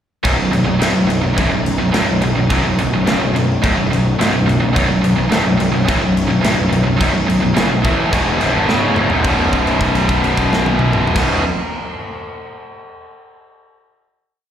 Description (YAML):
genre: heavy metal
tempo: 107 BPM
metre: 4/4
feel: straight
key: B minor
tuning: A4 = 440 Hz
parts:
  - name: heavy high-gain guitar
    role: riff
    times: 0.2-11.4 s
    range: B1 to A3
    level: -17 LUFS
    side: right 5 dB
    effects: distortion, slapback echo
  - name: tight distorted guitar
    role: riff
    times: 0.2-11.4 s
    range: B1 to A3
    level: -20 LUFS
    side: left 9 dB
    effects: distortion, slapback echo
  - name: fuzz picked electric bass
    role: bass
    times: 0.2-11.4 s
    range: B0 to A1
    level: -20 LUFS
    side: left 1 dB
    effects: overdrive
  - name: tight metal drum kit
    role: drums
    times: 0.2-11.3 s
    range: crash cymbal, kick drum, snare drum, toms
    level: -20 LUFS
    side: equal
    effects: none
room: small room ambience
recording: live gig heard through the venue's PA, recital hall reverb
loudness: -13 LUFS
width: side -9 dB against mid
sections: 0.3-9.2 riff; 9.2-11.5 final chord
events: drum fill 8.7-9.2; held note 9.2-11.2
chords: 0.3 Bm; 9.2 B5